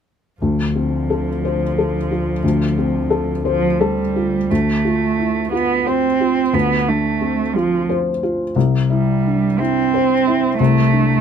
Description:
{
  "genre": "neoclassical piano and strings",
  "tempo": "59 BPM (dotted quarters)",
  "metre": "6/8",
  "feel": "rubato",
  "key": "D dorian",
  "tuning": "A4 = 440 Hz",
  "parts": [
    { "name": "muted cello", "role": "second line", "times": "0.4-11.2 s", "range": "F3 to C4", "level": "-19 LUFS", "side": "right 6 dB", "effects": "none" },
    { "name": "felt-muted upright piano", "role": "accompaniment", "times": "0.4-11.2 s", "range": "C2 to C5", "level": "-18 LUFS", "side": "left 3 dB", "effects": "none" },
    { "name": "muted double bass", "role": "bass", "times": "0.4-4.5 s", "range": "D2", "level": "-25 LUFS", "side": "left 2 dB", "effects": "none" }
  ],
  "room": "little or no reverb",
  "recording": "close, detailed microphones",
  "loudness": "-15 LUFS",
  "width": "side -8 dB against mid",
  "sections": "0.4-4.5 A section; 4.5-11.2 B section",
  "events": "none",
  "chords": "0.4 Dm7; 8.6 Cadd9"
}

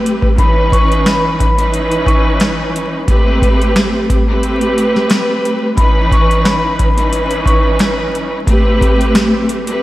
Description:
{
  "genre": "hip hop, boom-bap hip-hop",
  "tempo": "89 BPM",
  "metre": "4/4",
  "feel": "swing 56% on 16ths",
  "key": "C# minor",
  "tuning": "A4 = 440 Hz",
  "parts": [
    { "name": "warm studio string section", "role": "accompaniment", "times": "0.0-9.8 s", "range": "E3 to B4", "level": "-14 LUFS", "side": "equal", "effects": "cassette tape, high-pass filter, low-pass filter" },
    { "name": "booming analog drum machine", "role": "drums", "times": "0.1-9.8 s", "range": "hi-hat, kick drum, snare drum", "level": "-14 LUFS", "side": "equal", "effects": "overdrive" },
    { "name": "vibraphone with medium hard mallets", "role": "melody", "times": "0.4-7.6 s", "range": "B5 to C#6", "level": "-19 LUFS", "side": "left 1 dB", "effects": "high-pass filter, low-pass filter, diffuse ambient delay" }
  ],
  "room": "moderate church reverb, RT60 3.3 s",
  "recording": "dreamy mix soaked in reverb, vinyl crackle",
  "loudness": "-11 LUFS",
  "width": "side -16 dB against mid",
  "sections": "0.0-9.8 A section",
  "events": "kick muted 4.4-5.8",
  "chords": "0.4 C#m9; 3.1 Am9; 5.8 C#m9; 8.5 Am9"
}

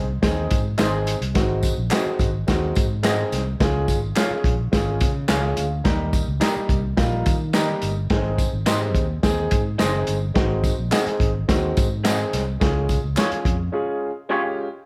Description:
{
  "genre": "uptempo 1960s-style soul",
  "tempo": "107 BPM",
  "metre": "4/4",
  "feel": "straight",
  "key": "unclear",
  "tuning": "A4 = 442 Hz",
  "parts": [
    { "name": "clear grand piano", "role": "accompaniment", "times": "0.0-14.7 s", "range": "G3 to Ab5", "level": "-28 LUFS", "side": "equal", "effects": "none" },
    { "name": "fingered electric bass", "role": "bass", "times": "0.0-13.7 s", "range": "Gb1 to Eb3", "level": "-28 LUFS", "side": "equal", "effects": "none" },
    { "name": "vintage drum kit", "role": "drums", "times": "0.2-13.6 s", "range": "hi-hat, kick drum, snare drum", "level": "-25 LUFS", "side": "equal", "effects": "none" },
    { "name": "tambourine and handclaps", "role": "percussion", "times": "0.2-13.3 s", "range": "none", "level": "-36 LUFS", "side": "equal", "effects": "none" },
    { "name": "electric guitar through a small old amp", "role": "stabs", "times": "0.8-14.4 s", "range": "C4 to F5", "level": "-28 LUFS", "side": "equal", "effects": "none" }
  ],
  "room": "light reverb",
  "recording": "none",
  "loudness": "-22 LUFS",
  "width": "mono",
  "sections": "0.0-14.9 A section",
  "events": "grand piano fill 5.0-5.9; break 13.7-14.9",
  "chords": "0.0 Ab; 1.4 Ab7; 3.6 Db; 5.9 Eb; 8.1 Ab; 10.4 Ab7; 12.6 Db"
}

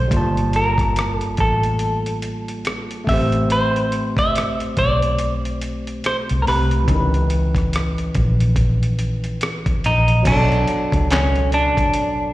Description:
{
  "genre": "R&B, neo-soul",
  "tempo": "71 BPM",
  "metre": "4/4",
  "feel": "swing 60% on 16ths",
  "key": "unclear",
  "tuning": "A4 = 438 Hz",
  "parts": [
    { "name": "semi-hollow electric guitar", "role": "melody", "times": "0.0-12.3 s", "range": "C#4 to E5", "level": "-21 LUFS", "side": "equal", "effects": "spring reverb, slapback echo" },
    { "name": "overdriven tine electric piano", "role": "accompaniment", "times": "0.0-12.3 s", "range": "B2 to A5", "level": "-25 LUFS", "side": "left 1 dB", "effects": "slapback echo" },
    { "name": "vintage muted fingered electric bass", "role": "bass", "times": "0.0-11.7 s", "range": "G1 to C#2", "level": "-20 LUFS", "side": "equal", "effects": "none" },
    { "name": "dusty soul sampler-style drum kit", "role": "drums", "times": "0.1-12.2 s", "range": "crash cymbal, handclaps, hi-hat, kick drum, rim click, snare drum", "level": "-23 LUFS", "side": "equal", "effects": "overdrive" }
  ],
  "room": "little or no reverb",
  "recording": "live gig heard through the venue's PA, recital hall reverb",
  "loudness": "-16 LUFS",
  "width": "side -16 dB against mid",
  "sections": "0.0-10.3 A section; 10.3-12.3 B section",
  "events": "none",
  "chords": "0.1 Gm9; 3.1 Am9; 6.9 C#m9; 10.3 Bm9"
}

